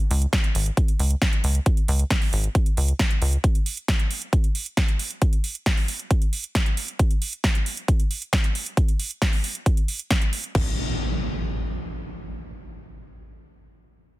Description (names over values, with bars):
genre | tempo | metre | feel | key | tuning
uplifting trance | 135 BPM | 4/4 | straight | unclear | A4 = 439 Hz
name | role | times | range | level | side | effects
big-room dance drum kit | drums | 0.0-10.6 s | crash cymbal, hi-hat, snare drum | -27 LUFS | right 1 dB | none
tight sequencer bass | bass | 0.1-3.4, 10.6-10.8 s | Ab1 to Db2 | -21 LUFS | equal | sidechain pumping
electronic kick drum | drums | 0.3-10.6 s | none | -21 LUFS | equal | none
impact | sound effects | 10.6-12.3 s | none | -29 LUFS | equal | none
room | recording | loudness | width
digital ambience | dense, heavily limited modern master | -21 LUFS | side -18 dB against mid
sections
0.0-10.6 A section; 10.6-12.3 B section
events
none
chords
none